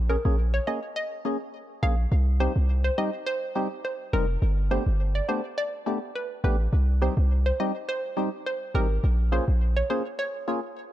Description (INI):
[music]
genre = dancehall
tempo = 104 BPM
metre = 4/4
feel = straight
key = C phrygian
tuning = A4 = 440 Hz
[part]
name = hard-hitting 808-style bass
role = bass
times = 0.0-9.8 s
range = F1 to C2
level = -22 LUFS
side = equal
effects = none
[part]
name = hollow square pluck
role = melody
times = 0.1-10.6 s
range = Bb4 to F5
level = -31 LUFS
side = right 1 dB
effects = chorus, digital delay
[part]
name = percussive organ stab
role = accompaniment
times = 0.1-10.6 s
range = G3 to Bb4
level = -31 LUFS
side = left 1 dB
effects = chorus
[sound]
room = little or no reverb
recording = dark, warm production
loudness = -24 LUFS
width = side -13 dB against mid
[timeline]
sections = 0.0-2.1 A section; 2.1-10.9 B section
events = none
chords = 0.0 Bbm7; 2.1 Cm; 4.4 Gadd9; 6.7 Cm; 9.0 Bbm7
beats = 0.38 0.96 1.54 | 2.11 2.69 3.27 3.85 | 4.42 5.00 5.58 6.15 | 6.73 7.31 7.88 8.46 | 9.04 9.61 10.19